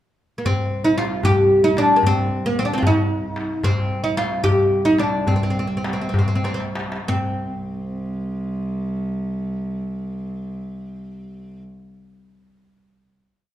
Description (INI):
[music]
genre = Arabic maqam ensemble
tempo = 61-76 BPM (dotted quarters)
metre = 6/8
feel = straight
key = C maqam rast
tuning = A4 = 438 Hz
[part]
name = oud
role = melody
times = 0.4-11.6 s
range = Bb3+50c to G4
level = -20 LUFS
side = equal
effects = none
[part]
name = dark cello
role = drone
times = 0.5-11.6 s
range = C2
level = -28 LUFS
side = right 1 dB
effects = none
[part]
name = darbuka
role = percussion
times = 0.5-7.4 s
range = none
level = -23 LUFS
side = left 1 dB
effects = none
[sound]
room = moderate recital hall reverb, RT60 1.6 s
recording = minimal, uncompressed stereo recording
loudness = -18 LUFS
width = side -12 dB against mid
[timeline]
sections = 0.0-0.5 pickup bar; 0.5-7.1 A section; 7.1-11.0 final note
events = slowing down 3.6-7.1; drum fill 6.4-7.1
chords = none